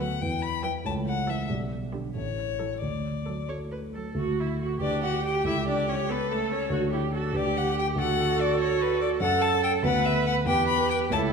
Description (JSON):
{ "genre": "quick classical-period movement for piano quartet", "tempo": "94 BPM (dotted quarters)", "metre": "6/8", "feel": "rubato", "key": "D major", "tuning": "A4 = 440 Hz", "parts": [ { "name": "rich violin", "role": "melody", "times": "0.0-11.2 s", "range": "A4 to B5", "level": "-29 LUFS", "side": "left 8 dB", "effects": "none" }, { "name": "rich cello", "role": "second line", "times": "0.0-11.3 s", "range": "D3 to B4", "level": "-30 LUFS", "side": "right 7 dB", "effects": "none" }, { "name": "dark concert grand piano", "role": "accompaniment", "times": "0.0-11.3 s", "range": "A1 to D5", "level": "-29 LUFS", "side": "equal", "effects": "none" }, { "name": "rich viola", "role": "accompaniment", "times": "0.0-11.3 s", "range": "A3 to C#5", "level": "-32 LUFS", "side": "right 2 dB", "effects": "none" } ], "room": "wet scoring stage reverb, RT60 1.7 s", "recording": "lossy compression artefacts", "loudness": "-24 LUFS", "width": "side -5 dB against mid", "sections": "0.0-4.2 A section; 4.2-11.3 B section", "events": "none", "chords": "0.2 E5; 0.9 A/C#; 1.5 G/B; 2.2 A; 2.8 D; 4.8 Em7/D; 5.5 A7/C#; 6.7 D; 7.3 G/D; 8.0 D; 9.2 F#m; 9.8 Bm/D; 10.5 Em", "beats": "| 0.21 0.85 | 1.50 2.15 | 2.82 3.50 | 4.17 4.83 | 5.47 6.09 | 6.72 7.35 | 7.97 8.60 | 9.22 9.85 | 10.48 11.12" }